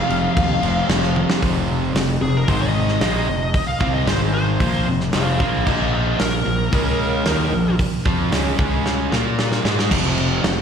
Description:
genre	hard rock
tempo	113 BPM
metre	4/4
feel	straight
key	F minor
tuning	A4 = 440 Hz
part	bluesy overdriven lead guitar	melody	0.0-7.7 s	Ab4 to F5	-24 LUFS	equal	distortion, slapback echo, analog delay
part	cranked stack guitar	riff	0.0-10.6 s	F2 to Bb4	-24 LUFS	right 11 dB	overdrive, slapback echo
part	sludgy distorted guitar	riff	0.0-10.6 s	F2 to Bb4	-25 LUFS	left 12 dB	overdrive, slapback echo
part	fuzz fingered electric bass	bass	0.1-10.6 s	F1 to Bb2	-22 LUFS	equal	overdrive
part	big rock drum kit	drums	0.1-10.6 s	crash cymbal, hi-hat, kick drum, snare drum, toms	-22 LUFS	equal	none
room	small room ambience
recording	live gig heard through the venue's PA, recital hall reverb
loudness	-17 LUFS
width	side -7 dB against mid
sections	0.0-1.4 A section; 1.4-9.9 B section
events	drum fill 1.2, 8.8-9.9; lead electric guitar solo 1.4-9.9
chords	0.0 F5; 2.5 Ab5; 3.0 F5; 4.1 Ab5; 4.6 Fm; 5.7 Bb5; 6.7 Db5; 7.3 Bb5; 8.6 Db5; 9.1 Bb5; 9.9 F5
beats	0.36 0.89 | 1.42 1.95 2.48 3.02 | 3.54 4.08 4.61 5.14 | 5.67 6.20 6.73 7.26 | 7.79 8.32 8.85 9.38 | 9.91 10.44

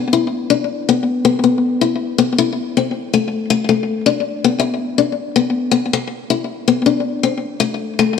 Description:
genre	highlife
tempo	107 BPM (dotted quarters)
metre	12/8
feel	straight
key	unclear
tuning	A4 = 440 Hz
part	picked steel-string acoustic guitar	solo	0.0-8.2 s	A3 to E4	-15 LUFS	left 6 dB	slapback echo
room	wet plate reverb, RT60 2.8 s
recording	none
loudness	-15 LUFS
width	side -6 dB against mid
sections	0.0-4.6 A section; 4.6-8.2 B section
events	none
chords	none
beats	| 0.11 0.68 1.24 1.80 | 2.36 2.93 3.49 4.05 | 4.61 5.18 5.74 6.30 | 6.86 7.43 7.99

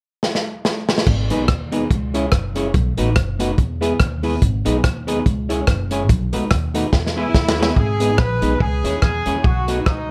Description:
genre	ska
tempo	143 BPM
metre	4/4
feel	swing 56% on 8ths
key	G# minor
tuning	A4 = 440 Hz
part	crunchy breakbeat drum kit	drums	0.2-10.0 s	crash cymbal, hi-hat, kick drum, rim click, snare drum	-22 LUFS	equal	none
part	upright bass	bass	1.1-10.1 s	F#1 to E2	-25 LUFS	equal	none
part	vintage hollow-body jazz guitar	accompaniment	1.3-9.9 s	A3 to C#5	-27 LUFS	equal	none
part	mellow tonewheel organ	stabs	1.3-10.1 s	G#3 to G#4	-26 LUFS	equal	slow rotary speaker
part	clear horn section	melody	7.2-10.1 s	D#4 to B4	-25 LUFS	equal	tape echo
room	light reverb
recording	none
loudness	-19 LUFS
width	mono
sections	0.0-1.1 A section; 1.1-7.8 B section; 7.8-10.1 C section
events	drum fill 0.2-1.1, 6.9-7.8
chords	0.0 N.C.; 1.1 G#m; 1.9 C#m; 2.7 B7; 3.6 E; 4.4 G#m; 5.3 C#m; 6.1 B7; 6.9 E; 7.8 G#m; 8.6 C#m; 9.4 B7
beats	0.23 0.65 | 1.07 1.49 1.91 2.33 | 2.74 3.16 3.58 4.00 | 4.42 4.84 5.26 5.67 | 6.09 6.51 6.93 7.35 | 7.77 8.19 8.61 9.02 | 9.44 9.86

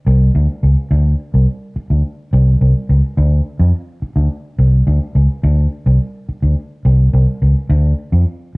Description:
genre	funk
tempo	106 BPM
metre	4/4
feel	straight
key	unclear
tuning	A4 = 440 Hz
part	vintage muted fingered electric bass	solo	0.1-8.6 s	C2 to F2	-12 LUFS	equal	cassette tape
room	light reverb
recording	home recording on cassette, nothing above 10.4 kHz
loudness	-12 LUFS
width	side -33 dB against mid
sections	0.0-8.6 A section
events	none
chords	none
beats	0.35 | 0.91 1.48 2.04 2.61 | 3.17 3.74 4.30 4.87 | 5.44 6.00 6.57 7.13 | 7.70 8.27

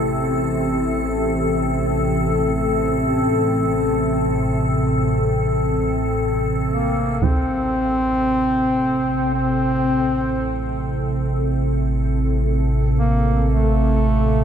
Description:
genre	dark ambient drone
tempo	58 BPM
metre	4/4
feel	straight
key	unclear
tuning	A4 = 439 Hz
part	deep dark ambient pad	sustained chords	0.0-14.4 s	C4 to E5	-28 LUFS	right 1 dB	chorus, built-in reverb
part	analog drone	drone	0.0-14.4 s	A1 to C3	-20 LUFS	equal	chorus
part	icy glass pad	texture	0.0-14.4 s	C4 to A4	-24 LUFS	left 2 dB	chorus, built-in reverb
part	mellow duduk	melody	6.7-14.4 s	A3 to C4	-21 LUFS	equal	ping-pong delay
part	taiko ensemble	percussion	7.2-7.4 s	none	-24 LUFS	right 2 dB	low-pass filter on perc
room	moderate huge ambient reverb, RT60 8.1 s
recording	none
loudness	-17 LUFS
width	side -8 dB against mid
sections	0.0-7.2 A section; 7.2-14.4 A section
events	fade-out on ambient pad 0.0-7.2; fade-in on ambient pad 7.2-14.4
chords	0.0 Am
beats	0.92 1.95 | 2.99 4.03 5.08 6.15 | 7.22 8.27 9.33 10.38 | 11.42 12.46 13.50

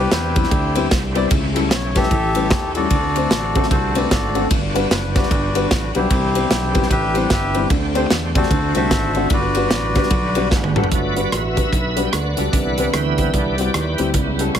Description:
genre	uptempo gospel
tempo	150 BPM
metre	4/4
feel	swing 62% on 8ths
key	G major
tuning	A4 = 437 Hz
part	melodica	melody	0.0-10.5 s	E4 to F#5	-22 LUFS	left 2 dB	none
part	dark upright piano	accompaniment	0.0-14.6 s	G2 to D5	-22 LUFS	left 4 dB	none
part	bright tonewheel organ	sustained chords	0.0-14.6 s	C#3 to G5	-26 LUFS	right 3 dB	slow rotary speaker, overdrive, chorus vibrato
part	fingered electric bass	bass	0.0-14.6 s	F#1 to E2	-23 LUFS	right 1 dB	none
part	modern studio drum kit	drums	0.1-14.6 s	hi-hat, kick drum, ride cymbal, rim click, snare drum, toms	-20 LUFS	right 1 dB	none
part	warm studio string section	sustained chords	10.9-14.6 s	C3 to F#4	-30 LUFS	equal	none
room	light reverb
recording	heavily compressed radio sound, multiband compression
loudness	-16 LUFS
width	side -9 dB against mid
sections	0.0-10.9 A section; 10.9-14.6 B section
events	drum fill 10.5-10.9; tonewheel organ solo 10.9-14.6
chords	0.0 Cmaj7; 1.3 A7; 2.9 D7; 4.5 Gmaj7; 6.1 Cmaj7; 7.7 D7sus4; 8.5 D7; 9.3 Gmaj7; 12.5 Cmaj7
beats	0.11 0.51 0.91 | 1.31 1.71 2.11 2.51 | 2.91 3.31 3.71 4.11 | 4.50 4.90 5.30 5.70 | 6.10 6.50 6.90 7.30 | 7.70 8.11 8.51 8.91 | 9.31 9.71 10.11 10.51 | 10.92 11.32 11.72 12.13 | 12.53 12.93 13.34 13.74 | 14.14 14.54

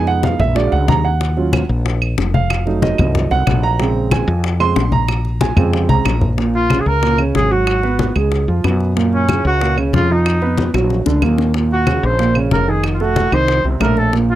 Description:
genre	Afro-Cuban jazz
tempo	186 BPM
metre	4/4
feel	straight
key	Bb minor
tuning	A4 = 439 Hz
part	warm grand piano	accompaniment	0.0-14.4 s	A2 to C6	-18 LUFS	right 4 dB	none
part	woody fretless electric bass	bass	0.0-14.4 s	F1 to Gb2	-17 LUFS	left 1 dB	none
part	bongos	percussion	0.1-14.3 s	none	-24 LUFS	left 8 dB	none
part	congas	percussion	0.1-14.4 s	none	-20 LUFS	left 2 dB	none
part	claves	percussion	1.5-14.0 s	none	-25 LUFS	right 8 dB	none
part	mellow trumpet	melody	6.5-14.4 s	Db4 to C5	-18 LUFS	equal	none
room	little or no reverb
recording	dry, close 1970s-style studio recording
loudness	-13 LUFS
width	side -13 dB against mid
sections	0.0-6.4 A section; 6.4-14.4 B section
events	grand piano solo 0.0-6.4; drum fill 5.9-6.4, 10.6-11.5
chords	0.0 Fm7b5; 0.6 Bb7alt; 1.2 Ebm9; 2.5 F7b9; 3.8 Bbm7; 7.7 Abm7; 8.3 Db7; 9.0 Gbmaj7; 10.3 Bmaj7#11; 10.9 Bbaug; 11.5 Ebm9; 12.8 F7b9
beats	0.24 0.56 0.89 | 1.21 1.53 1.86 2.18 | 2.50 2.83 3.15 3.47 | 3.79 4.12 4.44 4.76 | 5.09 5.41 5.73 6.05 | 6.38 6.70 7.02 7.35 | 7.67 7.99 8.32 8.64 | 8.96 9.29 9.61 9.93 | 10.26 10.58 10.90 11.23 | 11.55 11.87 12.19 12.52 | 12.84 13.16 13.48 13.81 | 14.13

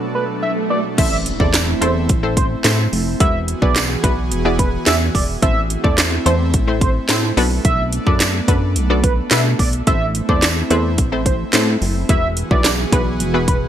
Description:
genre	dance-pop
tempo	108 BPM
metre	4/4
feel	straight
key	A dorian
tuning	A4 = 438 Hz
part	analog pluck	accompaniment	0.0-13.6 s	A3 to D5	-23 LUFS	left 2 dB	chorus, sidechain pumping
part	airy breathy pad	sustained chords	0.0-13.7 s	B2 to A4	-25 LUFS	right 2 dB	chorus, sidechain pumping
part	swell and impact	sound effects	0.0-3.2 s	none	-26 LUFS	right 2 dB	none
part	octave-doubled lead	melody	0.1-13.6 s	B4 to E5	-23 LUFS	right 2 dB	chorus, digital delay
part	chorused synth bass	bass	1.0-13.7 s	E1 to B2	-20 LUFS	equal	sidechain pumping
part	house drum kit	drums	1.0-13.6 s	crash cymbal, handclaps, hi-hat, kick drum, snare drum	-17 LUFS	equal	gated reverb
part	tambourine	percussion	1.5-12.8 s	none	-27 LUFS	right 10 dB	none
room	little or no reverb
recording	bright 1980s-style digital production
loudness	-14 LUFS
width	side -10 dB against mid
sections	1.0-13.7 A section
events	swell 0.0-1.0; drop 1.0-13.7; impact 1.0-3.2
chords	0.0 Bm7; 1.0 Am; 3.2 Eadd9; 5.4 Am; 7.4 Bm7; 9.9 Am; 12.1 Eadd9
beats	0.43 | 0.98 1.54 2.09 2.65 | 3.20 3.76 4.32 4.87 | 5.43 5.98 6.54 7.09 | 7.65 8.20 8.76 9.31 | 9.87 10.43 10.98 11.54 | 12.09 12.65 13.20

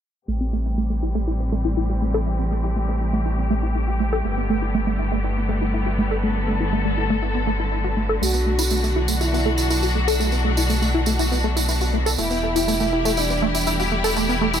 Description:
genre	melodic techno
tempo	121 BPM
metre	4/4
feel	straight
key	A dorian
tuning	A4 = 440 Hz
part	rich studio string section	sustained chords	0.3-14.6 s	B2 to A4	-26 LUFS	left 1 dB	low-pass filter
part	tight sequenced synth	arpeggios	0.3-14.6 s	A3 to A4	-24 LUFS	equal	chorus, phaser, dub echo
part	dark detuned saw bass	bass	0.3-14.6 s	E1 to B1	-24 LUFS	equal	none
part	expressive portamento lead	melody	8.2-13.8 s	D4 to F#4	-27 LUFS	right 1 dB	chorus, ping-pong delay
part	tambourine	percussion	8.2-14.6 s	none	-27 LUFS	right 6 dB	none
room	light reverb, small room ambience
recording	none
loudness	-19 LUFS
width	side -9 dB against mid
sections	0.3-14.6 A section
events	filter sweep on synth arpeggio sound 0.3-14.6; filter sweep on string section 0.3-14.6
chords	0.3 Am7; 4.2 Gadd9; 8.2 Bm; 12.2 Em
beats	| 0.28 0.78 1.27 1.77 | 2.27 2.76 3.26 3.75 | 4.25 4.75 5.24 5.74 | 6.23 6.73 7.22 7.72 | 8.22 8.71 9.21 9.70 | 10.20 10.70 11.19 11.69 | 12.18 12.68 13.18 13.67 | 14.17

